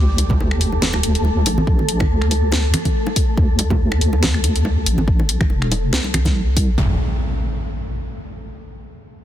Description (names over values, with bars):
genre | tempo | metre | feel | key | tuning
deep dubstep | 141 BPM | 4/4 | swing 55% on 16ths, half-time | unclear | A4 = 440 Hz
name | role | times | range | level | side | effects
deep soft wobble bass | bass | 0.0-7.0 s | D1 to D2 | -18 LUFS | equal | chorus
sub drop and impact | sound effects | 0.0-1.7, 6.8-8.5 s | none | -24 LUFS | equal | none
wind-like tuned noise texture | texture | 0.0-6.8 s | A3 to A4 | -26 LUFS | equal | built-in reverb
garage drum kit | drums | 0.2-6.7 s | finger snaps, hi-hat, snare drum | -23 LUFS | left 1 dB | none
bongos and congas | percussion | 0.2-6.7 s | none | -26 LUFS | right 1 dB | dub echo
deep house drum kit | drums | 0.3-6.9 s | kick drum, toms | -18 LUFS | equal | none
room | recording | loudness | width
little or no reverb | dense, heavily limited modern master | -16 LUFS | side -12 dB against mid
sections
0.0-6.8 A section; 6.8-8.5 B section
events
impact 0.0-1.7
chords
0.0 D5; 6.8 N.C.